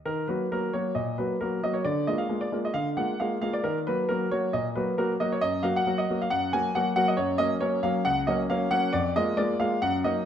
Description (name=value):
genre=classical-period piano sonatina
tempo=135 BPM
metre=4/4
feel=rubato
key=Eb minor, F# major from 7.2 s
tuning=A4 = 442 Hz
part: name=clear concert grand piano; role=solo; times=0.1-10.3 s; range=C#2 to Ab5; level=-24 LUFS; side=equal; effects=none
room=moderate recital hall reverb, RT60 1.5 s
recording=none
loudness=-24 LUFS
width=side -9 dB against mid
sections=0.1-10.3 A section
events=none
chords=0.1 Ebm; 1.9 Bb7/D; 3.6 Ebm; 5.4 Gbmaj13; 7.2 F#; 8.9 A#5/E#